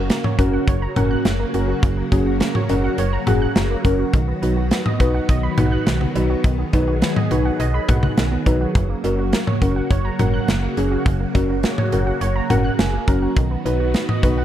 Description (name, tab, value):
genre	synth-pop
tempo	104 BPM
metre	4/4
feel	straight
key	F# major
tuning	A4 = 442 Hz
part	phased string machine	sustained chords	0.0-14.4 s	C#3 to G#4	-26 LUFS	equal	ensemble chorus, phaser
part	warbly dusty pluck	arpeggios	0.0-14.4 s	C#3 to F#6	-27 LUFS	right 4 dB	chorus, analog delay
part	slap-like FM bass	bass	0.0-14.4 s	F#1 to B1	-22 LUFS	equal	none
part	modern studio drum kit	drums	0.1-14.4 s	cowbell, hi-hat, kick drum, snare drum, toms	-20 LUFS	equal	none
part	muted felt-like synth keys	accompaniment	0.4-14.4 s	C#4 to A#5	-24 LUFS	left 1 dB	chorus
room	light reverb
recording	dark, warm production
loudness	-17 LUFS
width	side -11 dB against mid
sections	0.0-14.4 A section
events	synth keys fill 3.3-4.1, 12.2-13.4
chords	0.0 F#; 4.1 B; 8.8 F#; 13.4 B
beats	0.10 0.67 1.25 | 1.83 2.40 2.98 3.56 | 4.14 4.71 5.29 5.87 | 6.44 7.02 7.60 8.17 | 8.75 9.33 9.90 10.48 | 11.06 11.64 12.21 12.79 | 13.37 13.94